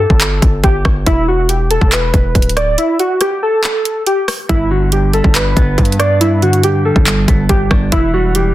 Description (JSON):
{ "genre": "hip hop, trap", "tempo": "140 BPM", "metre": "4/4", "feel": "half-time", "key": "unclear", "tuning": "A4 = 440 Hz", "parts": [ { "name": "warbly lo-fi synth keys", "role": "melody", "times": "0.0-8.5 s", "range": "E4 to D5", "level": "-15 LUFS", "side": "equal", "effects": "chorus, low-pass filter" }, { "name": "distorted 808-style bass", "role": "bass", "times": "0.0-8.5 s", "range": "D1 to G2", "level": "-16 LUFS", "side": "equal", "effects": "distortion" }, { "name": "trap drum kit", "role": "drums", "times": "0.1-8.4 s", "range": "handclaps, hi-hat, kick drum, rim click", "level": "-14 LUFS", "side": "equal", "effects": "none" }, { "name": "clean electric guitar", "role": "accompaniment", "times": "4.5-8.5 s", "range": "G2 to D4", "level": "-17 LUFS", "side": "right 1 dB", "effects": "low-pass filter" } ], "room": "little or no reverb", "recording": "dense, heavily limited modern master", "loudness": "-10 LUFS", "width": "side -15 dB against mid", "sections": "0.0-8.5 A section", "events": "break 2.8-4.5", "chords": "0.0 N.C.; 1.1 E5; 4.5 G; 7.9 Em" }